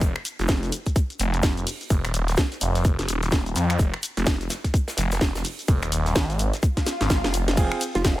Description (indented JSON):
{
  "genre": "bass house",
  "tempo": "127 BPM",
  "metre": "4/4",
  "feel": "swing 60% on 16ths",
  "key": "F minor",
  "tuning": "A4 = 439 Hz",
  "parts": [
    { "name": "phased detuned saw bass", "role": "bass", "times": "0.0-7.7 s", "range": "Eb1 to F2", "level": "-24 LUFS", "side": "equal", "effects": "phaser, overdrive, sidechain pumping" },
    { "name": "electronic kick drum", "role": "drums", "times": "0.0-8.2 s", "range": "none", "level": "-21 LUFS", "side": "equal", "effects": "none" },
    { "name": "garage drum kit", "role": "drums", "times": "0.0-8.2 s", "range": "crash cymbal, finger snaps, hi-hat, ride cymbal, shaker, snare drum", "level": "-27 LUFS", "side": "equal", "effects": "none" },
    { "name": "modern studio drum kit", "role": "drums", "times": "0.0-8.2 s", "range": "hi-hat, shaker, snare drum", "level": "-37 LUFS", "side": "equal", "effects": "sidechain pumping on hats, high-pass filter on hats, high-pass filter on snare, sidechain pumping on perc, high-pass filter on perc, high-pass filter on room" },
    { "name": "swell", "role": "sound effects", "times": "6.7-7.6 s", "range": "none", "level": "-33 LUFS", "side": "equal", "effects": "none" },
    { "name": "warm grand piano", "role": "stabs", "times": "7.6-7.8 s", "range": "C4 to Ab4", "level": "-28 LUFS", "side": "right 4 dB", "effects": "sidechain pumping" },
    { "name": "hollow square pluck", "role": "melody", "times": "8.0-8.2 s", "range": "F4", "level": "-28 LUFS", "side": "right 4 dB", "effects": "chorus" },
    { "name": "growl bass", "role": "bass", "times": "8.0-8.2 s", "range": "F1", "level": "-24 LUFS", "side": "equal", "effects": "chorus, overdrive, sidechain pumping" }
  ],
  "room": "studio ambience",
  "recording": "none",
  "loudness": "-21 LUFS",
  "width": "side -16 dB against mid",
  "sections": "0.0-8.2 A section",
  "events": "swell 6.7-7.6; drum fill 6.9-7.6",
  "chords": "none"
}